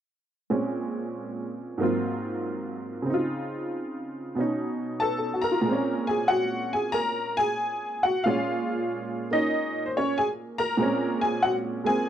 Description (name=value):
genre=solo jazz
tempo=94 BPM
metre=4/4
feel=swing 67% on 8ths, rubato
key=Bb minor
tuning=A4 = 440 Hz
part: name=honky-tonk upright piano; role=solo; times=0.5-12.1 s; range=Ab2 to Bb5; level=-25 LUFS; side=equal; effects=none
room=studio ambience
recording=dry, close 1970s-style studio recording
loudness=-25 LUFS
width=side -10 dB against mid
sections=0.5-5.7 A section; 5.7-12.1 B section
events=none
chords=0.5 Bbm9; 1.8 Ab13; 3.1 Dbmaj9; 4.4 B9; 5.7 Bbm9